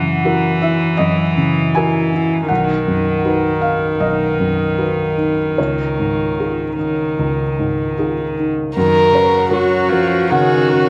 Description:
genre	neoclassical piano and strings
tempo	74-82 BPM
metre	4/4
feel	rubato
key	F# major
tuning	A4 = 440 Hz
part	warm cello	second line	0.0-10.9 s	C#3 to F#3	-20 LUFS	equal	none
part	felt-muted upright piano	accompaniment	0.0-10.9 s	B1 to G#5	-21 LUFS	equal	none
part	dark violin	melody	8.8-10.9 s	F#4 to A#4	-16 LUFS	equal	none
part	warm viola	accompaniment	8.8-10.9 s	F#4 to G#4	-27 LUFS	equal	none
part	glassy FM pad	sustained chords	9.2-10.9 s	C#4 to C#5	-27 LUFS	equal	ensemble chorus, built-in reverb
room	wet echo chamber reverb, RT60 1.6 s, small room ambience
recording	none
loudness	-16 LUFS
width	mono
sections	0.0-8.8 A section; 8.8-10.9 B section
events	none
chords	0.0 F#7; 2.5 B; 5.6 C#add9; 8.8 F#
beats	0.24 0.98 1.75 | 2.50 3.24 3.99 4.77 | 5.57 6.38 7.18 7.97 | 8.76 9.52 10.30

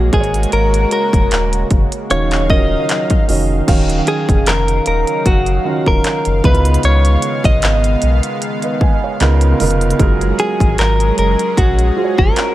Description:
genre	contemporary R&B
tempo	76 BPM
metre	4/4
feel	swing 54% on 16ths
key	Eb minor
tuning	A4 = 440 Hz
part	direct-recorded clean electric guitar	melody	0.0-12.5 s	Gb4 to Eb5	-17 LUFS	equal	analog delay
part	dark concert grand piano	accompaniment	0.0-12.5 s	Db3 to Ab5	-20 LUFS	right 4 dB	analog delay
part	lush unison pad	sustained chords	0.0-12.5 s	Db3 to F5	-22 LUFS	equal	chorus
part	warm sub bass	bass	0.0-12.3 s	Eb1 to Db2	-15 LUFS	equal	none
part	trap drum kit	drums	0.1-12.5 s	crash cymbal, handclaps, hi-hat, kick drum	-16 LUFS	equal	none
room	digital ambience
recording	echo-heavy mix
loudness	-12 LUFS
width	side -14 dB against mid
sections	0.0-3.7 A section; 3.7-12.5 A section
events	none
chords	0.1 Ab9sus4; 2.1 Ebm9; 6.4 Db13; 10.0 Gbmaj9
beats	| 0.52 1.31 2.10 2.89 | 3.68 4.47 5.26 6.05 | 6.84 7.63 8.42 9.21 | 9.99 10.79 11.57 12.36

